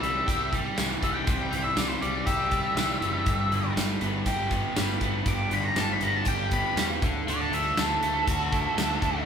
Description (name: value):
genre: classic rock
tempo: 120 BPM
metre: 4/4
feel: straight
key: unclear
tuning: A4 = 441 Hz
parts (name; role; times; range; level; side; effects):
- octave-fuzz lead guitar; melody; 0.0-9.2 s; A4 to D6; -29 LUFS; left 1 dB; distortion
- overdriven electric guitar; riff; 0.0-9.3 s; G2 to G4; -29 LUFS; equal; none
- fuzz picked electric bass; bass; 0.0-9.2 s; F#1 to E2; -32 LUFS; equal; overdrive
- huge arena drum kit; drums; 0.0-9.1 s; hi-hat, kick drum, snare drum, tambourine; -29 LUFS; equal; none
room: moderate large studio reverb, RT60 0.8 s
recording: band playing live in one room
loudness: -24 LUFS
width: side -7 dB against mid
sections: 0.0-9.3 A section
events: lead electric guitar solo 0.0-9.3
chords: 0.0 C; 3.3 G; 7.0 D